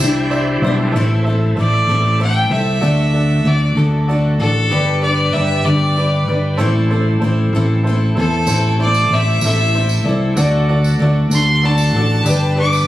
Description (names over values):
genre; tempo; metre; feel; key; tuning
folk rock and heartland rock; 64 BPM (dotted quarters); 6/8; straight; A dorian; A4 = 440 Hz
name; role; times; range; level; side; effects
clear fiddle; melody; 0.0-12.9 s; A4 to D6; -20 LUFS; equal; tape echo
bright baby grand piano; accompaniment; 0.0-12.8 s; E4 to E5; -25 LUFS; right 2 dB; none
picked twelve-string acoustic guitar; accompaniment; 0.0-12.9 s; A2 to C5; -22 LUFS; left 2 dB; none
bright tonewheel organ; sustained chords; 0.0-12.9 s; A3 to E5; -28 LUFS; right 1 dB; slow rotary speaker
fingered electric bass; bass; 0.0-12.8 s; G1 to E2; -15 LUFS; equal; none
tambourine; percussion; 0.0-0.4, 8.5-12.9 s; none; -26 LUFS; right 3 dB; none
room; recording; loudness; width
little or no reverb; recorded on a phone in the room, studio reverb, compression; -13 LUFS; side -14 dB against mid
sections
0.9-12.9 A section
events
fiddle solo 0.9-12.9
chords
0.0 Cadd9; 0.9 Am; 2.8 D; 4.7 G; 6.6 Am; 10.4 D; 12.2 G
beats
0.01 | 0.95 1.89 | 2.83 3.78 | 4.72 5.66 | 6.60 7.54 | 8.48 9.43 | 10.37 11.31 | 12.24